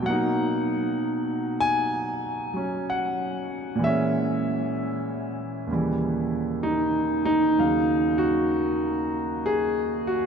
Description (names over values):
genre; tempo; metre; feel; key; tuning
solo jazz; 64 BPM; 4/4; swing 66% on 8ths; unclear; A4 = 440 Hz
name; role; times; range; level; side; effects
clear concert grand piano; solo; 0.0-10.3 s; D#2 to G#5; -23 LUFS; equal; none
room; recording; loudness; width
wet cathedral reverb, RT60 7.2 s; in a vast, echoing space; -23 LUFS; side -6 dB against mid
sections
0.0-7.6 A section; 7.6-10.3 B section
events
grand piano solo 0.0-7.6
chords
0.0 Bmaj7; 3.8 A#m7b5; 5.7 D#7b9; 7.6 Ebm9